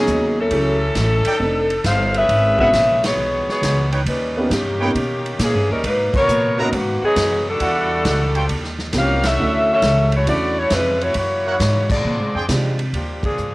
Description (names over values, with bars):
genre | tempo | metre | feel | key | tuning
jazz, big band swing | 135 BPM | 4/4 | swing 68% on 8ths | unclear | A4 = 442 Hz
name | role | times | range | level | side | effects
clear saxophone section | melody | 0.0-13.5 s | D#3 to E#5 | -18 LUFS | left 1 dB | cassette tape, plate reverb
dark baby grand piano | accompaniment | 0.0-12.8 s | F#3 to A#4 | -23 LUFS | right 1 dB | plate reverb
upright bass | bass | 0.0-13.5 s | F1 to B#2 | -22 LUFS | equal | none
swinging big-band drum kit | drums | 0.1-13.5 s | crash cymbal, hi-hat, kick drum, ride cymbal, snare drum | -25 LUFS | right 1 dB | cassette tape
clear trumpet section | stabs | 1.3-8.5, 11.5-12.4 s | D4 to A#5 | -24 LUFS | right 2 dB | plate reverb
room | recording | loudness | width
moderate booth ambience, RT60 0.2 s | home recording on cassette | -16 LUFS | side -21 dB against mid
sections
0.0-12.9 A section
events
band accent 3.0, 6.1, 9.2, 11.8, 13.2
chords
0.0 Bmaj9; 0.5 F#m7; 1.4 F13; 2.3 E69; 4.1 D#7b13; 5.8 G#m11; 7.6 Em9; 8.5 D#13; 9.4 Dmaj9; 11.2 F#7; 12.0 A#13; 12.9 Ebmaj9